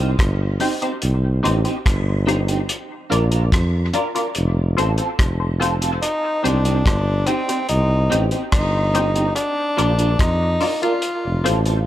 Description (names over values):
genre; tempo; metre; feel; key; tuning
dub reggae; 72 BPM; 4/4; straight; C dorian; A4 = 437 Hz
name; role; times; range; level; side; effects
electric guitar at the edge of break-up; accompaniment; 0.0-11.8 s; C4 to Bb4; -26 LUFS; right 3 dB; ensemble chorus, dub echo
mellow tuba; bass; 0.0-11.9 s; F1 to F2; -19 LUFS; equal; none
cloth-damped thuddy drum kit; drums; 0.2-11.8 s; hi-hat, kick drum, rim click; -22 LUFS; equal; none
filtered dub chord stab; stabs; 0.6-11.7 s; Eb4 to D5; -27 LUFS; left 4 dB; phaser, dub echo
breathy tenor saxophone; melody; 6.0-11.6 s; C4 to F4; -22 LUFS; left 1 dB; dub echo
room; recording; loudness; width
studio reverb; none; -17 LUFS; side -13 dB against mid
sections
0.0-11.9 A section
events
break 0.0-6.0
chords
0.0 Cm; 2.7 Bb; 4.4 F; 6.0 Cm; 9.4 Bb; 11.0 F